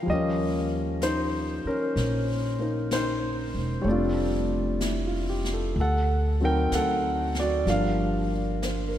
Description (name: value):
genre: jazz ballad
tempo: 63 BPM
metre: 4/4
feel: swing 68% on 8ths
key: unclear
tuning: A4 = 439 Hz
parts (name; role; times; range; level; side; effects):
- warm grand piano; accompaniment; 0.0-9.0 s; F3 to G5; -26 LUFS; left 1 dB; none
- upright bass; bass; 0.1-9.0 s; E1 to Eb2; -28 LUFS; equal; none
- jazz brush drum kit; drums; 0.1-9.0 s; brushed snare drum, hi-hat, snare drum; -38 LUFS; left 2 dB; none
room: moderate lush hall reverb, RT60 2.7 s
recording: dreamy mix soaked in reverb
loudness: -24 LUFS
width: side -11 dB against mid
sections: 0.0-9.0 A section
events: none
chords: 0.1 Eb9; 3.9 F69; 5.8 D7b9; 7.7 Gm7